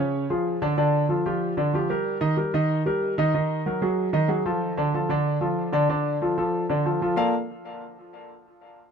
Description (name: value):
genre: jazz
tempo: 188 BPM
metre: 4/4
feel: straight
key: Bb major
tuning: A4 = 440 Hz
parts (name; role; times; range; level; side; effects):
- clear concert grand piano; solo; 0.0-7.3 s; Db3 to F5; -22 LUFS; equal; none
room: light reverb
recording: close, detailed microphones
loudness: -22 LUFS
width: side -6 dB against mid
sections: 0.0-7.2 A section; 7.2-8.5 B section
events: none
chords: 0.0 Db; 0.8 Dm; 1.4 G5; 2.1 Eb; 3.3 Ebm; 4.0 Ab5; 4.6 Dm; 7.2 Bbmaj7